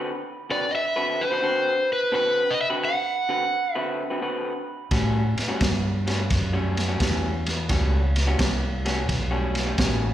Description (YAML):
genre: electric blues shuffle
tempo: 86 BPM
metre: 4/4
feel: swing 67% on 8ths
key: D mixolydian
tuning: A4 = 438 Hz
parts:
  - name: electric guitar through a small old amp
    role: riff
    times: 0.0-10.1 s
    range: A2 to B4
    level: -28 LUFS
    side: left 1 dB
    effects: spring reverb, slapback echo
  - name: crunchy overdriven guitar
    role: melody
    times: 0.5-4.2 s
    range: B4 to F#5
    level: -22 LUFS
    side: equal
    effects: slapback echo
  - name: fingered electric bass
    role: bass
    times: 4.9-10.1 s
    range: A1 to A2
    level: -24 LUFS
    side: equal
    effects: none
  - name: crunchy breakbeat drum kit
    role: drums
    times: 4.9-10.0 s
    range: kick drum, ride cymbal, snare drum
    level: -25 LUFS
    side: equal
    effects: none
room: light reverb, studio reverb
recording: live gig heard through the venue's PA, club reverb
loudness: -22 LUFS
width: side -12 dB against mid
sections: 0.0-10.1 A section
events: none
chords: 0.0 D6; 4.9 A13